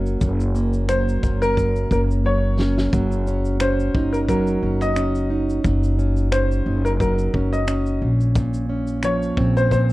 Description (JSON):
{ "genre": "acoustic pop", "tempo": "88 BPM", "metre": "4/4", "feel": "swing 55% on 16ths", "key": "unclear", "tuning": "A4 = 442 Hz", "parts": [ { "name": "fingerpicked plugged-in steel-string acoustic guitar", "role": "accompaniment", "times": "0.0-9.9 s", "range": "Gb2 to Eb4", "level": "-23 LUFS", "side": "right 2 dB", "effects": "none" }, { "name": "upright bass", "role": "bass", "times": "0.0-9.9 s", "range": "Gb1 to Bb1", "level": "-21 LUFS", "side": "equal", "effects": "none" }, { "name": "loose indie drum kit", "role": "drums", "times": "0.1-9.9 s", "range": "finger snaps, kick drum, shaker, snare drum", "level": "-24 LUFS", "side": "equal", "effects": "none" }, { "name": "bright upright piano", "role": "melody", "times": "0.9-9.9 s", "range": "Bb4 to Eb5", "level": "-23 LUFS", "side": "left 1 dB", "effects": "slapback echo" } ], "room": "little or no reverb", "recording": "dry, close 1970s-style studio recording", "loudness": "-18 LUFS", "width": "side -18 dB against mid", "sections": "0.0-9.9 A section", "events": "drum fill 2.2-2.9", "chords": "0.0 Gb; 2.9 Ebm7/Gb; 8.0 Bbmadd9" }